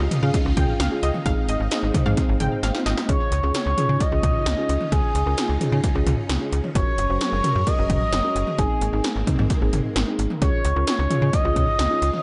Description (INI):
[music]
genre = synth-pop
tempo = 131 BPM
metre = 4/4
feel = straight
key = unclear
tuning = A4 = 441 Hz
[part]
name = muted felt-like synth keys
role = accompaniment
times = 0.0-12.1 s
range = C4 to C5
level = -31 LUFS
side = equal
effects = chorus
[part]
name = phased string machine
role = sustained chords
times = 0.0-12.2 s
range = Db3 to Bb4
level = -35 LUFS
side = equal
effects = ensemble chorus, phaser
[part]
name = slap-like FM bass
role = bass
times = 0.0-12.1 s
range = Gb1 to Db3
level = -25 LUFS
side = equal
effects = none
[part]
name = 80s electronic pad drums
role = drums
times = 0.1-12.2 s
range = hi-hat, kick drum, snare drum, toms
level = -26 LUFS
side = equal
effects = gated reverb on snare and toms
[part]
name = analog pluck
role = second line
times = 0.2-2.9 s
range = Eb5 to G5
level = -33 LUFS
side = equal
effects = chorus, tape echo
[part]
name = expressive synth lead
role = melody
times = 3.1-12.2 s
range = Ab4 to Eb5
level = -28 LUFS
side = equal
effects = chorus, tape echo
[sound]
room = moderate spring reverb, RT60 2.5 s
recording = echo-heavy mix, nothing above 10.5 kHz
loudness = -22 LUFS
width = mono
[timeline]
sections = 0.0-3.1 A section; 3.1-12.2 B section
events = drum fill 2.6-3.1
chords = 0.0 Dbadd9; 1.3 Ab; 3.1 Dbadd9; 6.8 Gbadd9; 8.6 Abadd9; 10.4 Dbadd9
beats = 0.34 0.80 | 1.26 1.72 2.17 2.63 | 3.09 3.55 4.00 4.46 | 4.92 5.38 5.84 6.29 | 6.75 7.21 7.67 8.13 | 8.59 9.04 9.50 9.96 | 10.42 10.88 11.33 11.79